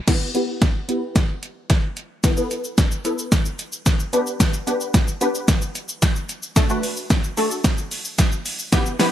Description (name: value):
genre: dance-pop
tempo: 111 BPM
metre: 4/4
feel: straight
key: unclear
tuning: A4 = 440 Hz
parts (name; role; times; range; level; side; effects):
- wavetable chord stab; accompaniment; 0.1-9.1 s; A3 to B4; -23 LUFS; left 1 dB; ensemble chorus, sidechain pumping, low-pass filter
- pop drum kit; drums; 0.1-9.1 s; crash cymbal, hi-hat, kick drum, shaker, snare drum; -19 LUFS; equal; overdrive
room: little or no reverb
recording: bright 1980s-style digital production, lossy compression artefacts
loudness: -19 LUFS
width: side -11 dB against mid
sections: 0.1-9.1 A section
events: build-up 0.1-9.1; drum fill 0.1-9.1; filter sweep on synth stab 0.1-9.1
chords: 0.1 Em; 2.2 Asus2; 4.1 G/B; 6.6 D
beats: | 0.08 0.62 1.16 1.70 | 2.24 2.78 3.32 3.86 | 4.40 4.94 5.48 6.02 | 6.56 7.10 7.64 8.19 | 8.72